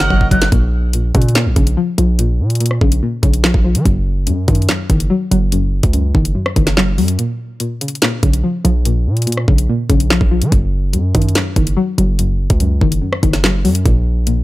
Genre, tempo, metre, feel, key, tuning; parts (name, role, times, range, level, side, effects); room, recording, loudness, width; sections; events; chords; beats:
hip hop, drill; 144 BPM; 4/4; half-time; Bb minor; A4 = 445 Hz
mellow hollow jazz flute; melody; 0.0-0.5 s; F6 to Gb6; -21 LUFS; right 1 dB; low-pass filter, digital delay
string-like resonator pluck; accompaniment; 0.0-14.4 s; Gb2 to Gb3; -18 LUFS; left 2 dB; chorus, low-pass filter
hand-pumped harmonium; sustained chords; 0.0-0.5 s; Gb3 to Bb4; -28 LUFS; right 4 dB
hard-hitting 808-style bass; bass; 0.0-14.4 s; Gb1 to F3; -15 LUFS; equal
drill drum kit; drums; 0.0-14.4 s; handclaps, hi-hat, kick drum, rim click, snare drum; -15 LUFS; equal; overdrive
small room ambience; -12 LUFS; side -17 dB against mid
0.5-14.4 A section
drum fill 0.1-0.5; break 7.2-8.0
0.0 Gb6; 0.5 Bbm; 3.9 Gb5; 7.2 Bbm; 10.5 Gb5; 13.9 N.C.
0.10 | 0.52 0.94 1.35 1.77 | 2.19 2.60 3.02 3.44 | 3.85 4.27 4.69 5.11 | 5.52 5.94 6.36 6.77 | 7.19 7.61 8.02 8.44 | 8.86 9.27 9.69 10.11 | 10.52 10.94 11.36 11.77 | 12.19 12.61 13.02 13.44 | 13.86 14.27